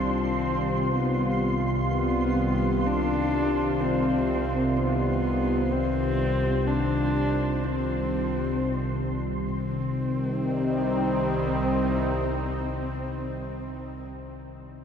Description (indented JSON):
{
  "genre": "dark ambient drone",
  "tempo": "free time",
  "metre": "none",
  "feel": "none",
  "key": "C harmonic minor",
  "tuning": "A4 = 440 Hz",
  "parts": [
    { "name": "dark horsehead fiddle", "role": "melody", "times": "0.0-14.1 s", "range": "B3 to D4", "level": "-29 LUFS", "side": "left 1 dB", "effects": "ping-pong delay" },
    { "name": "sweeping resonant pad", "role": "sustained chords", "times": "0.0-14.1 s", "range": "C2 to F4", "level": "-28 LUFS", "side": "equal", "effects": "chorus" },
    { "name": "analog drone", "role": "drone", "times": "0.0-14.1 s", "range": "C2 to C3", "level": "-29 LUFS", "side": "equal", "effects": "chorus" },
    { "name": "flickering grainy texture", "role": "texture", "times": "0.0-9.5 s", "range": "C6", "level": "-36 LUFS", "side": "right 2 dB", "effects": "built-in reverb" }
  ],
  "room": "wet huge ambient reverb, RT60 7.8 s",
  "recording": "in a vast, echoing space",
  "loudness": "-23 LUFS",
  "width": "side -7 dB against mid",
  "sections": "0.0-9.5 A section; 9.5-13.3 B section",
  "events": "none",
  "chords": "0.0 Cmadd11; 9.5 Cm",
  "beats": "free time"
}